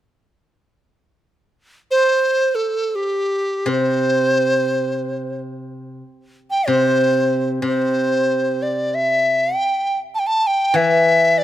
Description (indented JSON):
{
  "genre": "chinese traditional, Chinese chamber ensemble",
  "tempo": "free time",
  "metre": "none",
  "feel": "none",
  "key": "C gong mode",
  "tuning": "A4 = 440 Hz",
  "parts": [
    { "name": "hollow large dizi", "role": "melody", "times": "1.9-11.4 s", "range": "G4 to A5", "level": "-17 LUFS", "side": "equal", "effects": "none" },
    { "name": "steel-string zither", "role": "accompaniment", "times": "3.7-11.4 s", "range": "C3 to E3", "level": "-21 LUFS", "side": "left 1 dB", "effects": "none" }
  ],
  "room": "light reverb",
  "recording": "close, detailed microphones",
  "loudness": "-16 LUFS",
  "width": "side -12 dB against mid",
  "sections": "1.5-7.6 A section; 7.6-11.4 B section",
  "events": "none",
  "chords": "none",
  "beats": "free time"
}